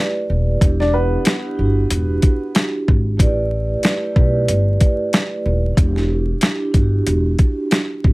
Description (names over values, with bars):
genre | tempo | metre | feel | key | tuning
hip hop, boom-bap hip-hop | 93 BPM | 4/4 | swing 55% on 16ths | E minor | A4 = 441 Hz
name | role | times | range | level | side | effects
vibraphone with soft mallets | accompaniment | 0.0-8.1 s | A3 to D5 | -22 LUFS | right 2 dB | cassette tape, high-pass filter, low-pass filter
upright bass | bass | 0.3-8.1 s | D#1 to B1 | -18 LUFS | equal | none
boom bap sampler-style drum kit | drums | 0.6-8.1 s | hi-hat, kick drum, snare drum | -15 LUFS | equal | none
warm upright piano | melody | 0.8-2.7 s | B3 to D5 | -23 LUFS | equal | high-pass filter, low-pass filter
room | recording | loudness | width
light reverb | vinyl crackle | -15 LUFS | side -22 dB against mid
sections
0.0-8.1 A section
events
none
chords
0.0 A9sus4; 0.6 Em9; 3.2 A9sus4; 5.8 Em9